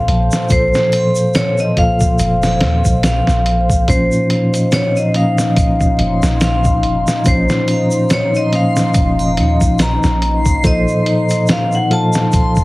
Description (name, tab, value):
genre	trip hop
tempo	71 BPM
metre	4/4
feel	swing 56% on 16ths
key	Bb harmonic minor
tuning	A4 = 440 Hz
part	vibraphone with hard mallets	melody	0.0-12.6 s	C5 to Bb5	-18 LUFS	left 1 dB	tape echo
part	mellow tine electric piano	accompaniment	0.0-12.6 s	Bb2 to F5	-16 LUFS	equal	tremolo
part	dark analog pad	sustained chords	0.0-12.6 s	Eb4 to C5	-25 LUFS	left 2 dB	chorus
part	soft 808-style bass	bass	0.0-10.9 s	F1 to Eb2	-17 LUFS	equal	tube saturation
part	dusty soul sampler-style drum kit	drums	0.1-12.6 s	hi-hat, kick drum, snare drum	-17 LUFS	equal	vintage 12-bit sampler grit
part	tube shaker and triangle	percussion	0.3-12.6 s	none	-30 LUFS	right 2 dB	none
part	backwards swelling texture	texture	4.5-12.6 s	C6	-29 LUFS	right 1 dB	built-in reverb
room	light reverb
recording	heavily compressed radio sound, vinyl crackle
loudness	-12 LUFS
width	side -20 dB against mid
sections	0.0-12.6 A section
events	none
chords	0.0 F; 3.9 Bbmadd9; 10.6 F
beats	| 0.50 1.35 2.19 3.04 | 3.88 4.73 5.57 6.42 | 7.26 8.11 8.95 9.80 | 10.64 11.49 12.33